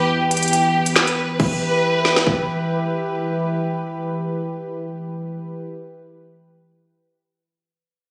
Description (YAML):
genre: hip hop, drill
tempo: 138 BPM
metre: 4/4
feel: half-time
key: E minor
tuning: A4 = 442 Hz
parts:
  - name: warm studio violin section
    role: melody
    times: 0.0-2.7 s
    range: G4 to B4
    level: -23 LUFS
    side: equal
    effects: delay
  - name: warm analog pad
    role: sustained chords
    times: 0.0-5.6 s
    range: E2 to B4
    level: -26 LUFS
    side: equal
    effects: chorus
  - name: drill drum kit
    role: drums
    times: 0.3-2.4 s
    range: crash cymbal, handclaps, hi-hat, kick drum, snare drum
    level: -22 LUFS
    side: equal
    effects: none
room: light reverb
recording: recorded on a phone in the room, studio reverb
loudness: -21 LUFS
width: mono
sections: 0.0-1.4 A section; 1.4-4.9 B section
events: none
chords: 0.0 Em